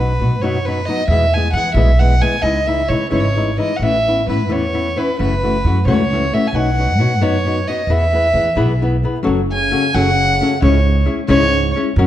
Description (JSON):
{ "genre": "mexican folk, mariachi", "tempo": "89 BPM (dotted quarters)", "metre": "6/8", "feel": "rubato", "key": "E major", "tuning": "A4 = 441 Hz", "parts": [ { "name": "warm violin", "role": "melody", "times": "0.0-11.8 s", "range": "B4 to G#5", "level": "-18 LUFS", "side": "right 1 dB", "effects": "none" }, { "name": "flamenco guitar", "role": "accompaniment", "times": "0.0-12.1 s", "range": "E2 to C#5", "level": "-19 LUFS", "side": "left 3 dB", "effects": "none" }, { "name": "upright bass", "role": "bass", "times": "0.0-12.1 s", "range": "F#1 to E3", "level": "-17 LUFS", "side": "right 1 dB", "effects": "none" }, { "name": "mellow trombone", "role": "second line", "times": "9.5-11.8 s", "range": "G#2 to C#3", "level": "-22 LUFS", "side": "right 4 dB", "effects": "none" } ], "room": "moderate recital hall reverb, RT60 1.4 s", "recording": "dark, warm production", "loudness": "-13 LUFS", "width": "side -12 dB against mid", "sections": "0.0-9.3 A section; 9.3-12.1 B section", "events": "none", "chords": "0.0 B; 1.1 E; 2.4 C#madd9; 3.8 Aadd9; 5.2 F#m7; 6.5 Badd9; 7.9 E; 9.3 F#m; 10.6 C#m" }